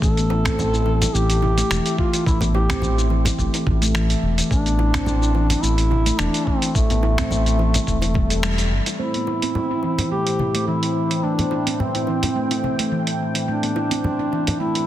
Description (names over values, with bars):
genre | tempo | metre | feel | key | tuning
organic downtempo | 107 BPM | 4/4 | swing 54% on 16ths | A minor | A4 = 440 Hz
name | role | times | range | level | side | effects
mellow duduk | melody | 0.0-14.9 s | A3 to A4 | -24 LUFS | left 1 dB | tape echo
handpan | arpeggios | 0.0-14.9 s | E3 to A4 | -24 LUFS | right 1 dB | low-pass filter, digital delay
smooth synth bass | bass | 0.0-8.8 s | E1 to A1 | -20 LUFS | equal | none
dusty soul sampler-style drum kit | drums | 0.0-14.9 s | finger snaps, hi-hat, shaker | -26 LUFS | right 1 dB | soft clipping on snare, studio ambience
electronic kick drum | drums | 0.0-8.3 s | none | -23 LUFS | equal | studio ambience
bongos and congas | percussion | 0.3-14.6 s | none | -29 LUFS | left 1 dB | none
warm analog pad | sustained chords | 9.0-14.9 s | A2 to G5 | -28 LUFS | equal | chorus, sidechain pumping
bronze singing bowl | texture | 9.0-14.9 s | C4 to C5 | -34 LUFS | right 6 dB | none
room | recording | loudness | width
light reverb, studio reverb | dense, heavily limited modern master | -18 LUFS | side -12 dB against mid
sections
0.0-9.0 A section; 9.0-14.9 B section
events
band accent 8.4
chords
0.0 A5; 9.0 Am7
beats
| 0.02 0.58 1.14 1.70 | 2.26 2.83 3.38 3.95 | 4.51 5.07 5.63 6.19 | 6.75 7.31 7.87 8.43 | 8.99 9.55 10.11 10.68 | 11.24 11.80 12.36 12.92 | 13.48 14.04 14.60